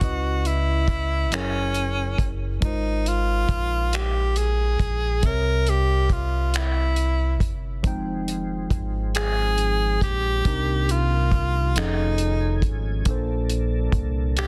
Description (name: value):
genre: slow six-eight R&B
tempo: 46 BPM (dotted quarters)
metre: 6/8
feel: straight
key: C minor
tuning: A4 = 438 Hz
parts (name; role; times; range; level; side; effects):
- breathy tenor saxophone; melody; 0.0-14.5 s; C#4 to Bb4; -28 LUFS; equal; none
- tine electric piano; accompaniment; 0.0-14.5 s; Bb2 to G5; -33 LUFS; equal; none
- deep dub fingered electric bass; bass; 0.0-14.5 s; F1 to Db2; -27 LUFS; equal; none
- cloth-damped thuddy drum kit; drums; 0.0-14.5 s; finger snaps, hi-hat, kick drum; -27 LUFS; equal; soft clipping on snare
- tonewheel organ; sustained chords; 7.8-14.5 s; C3 to G#5; -38 LUFS; equal; chorus vibrato, slow rotary speaker
room: studio reverb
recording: dense, heavily limited modern master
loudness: -23 LUFS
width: mono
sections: 0.0-14.5 A section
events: none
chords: 0.0 Dbm7; 1.3 F#9; 2.6 Ab69; 5.2 C7b9; 7.8 Fm7; 10.4 Cm7; 11.8 F7alt; 13.1 Bbmaj9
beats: | 0.01 1.32 | 2.62 3.93 | 5.23 6.54 | 7.84 9.15 | 10.45 11.75 | 13.06 14.36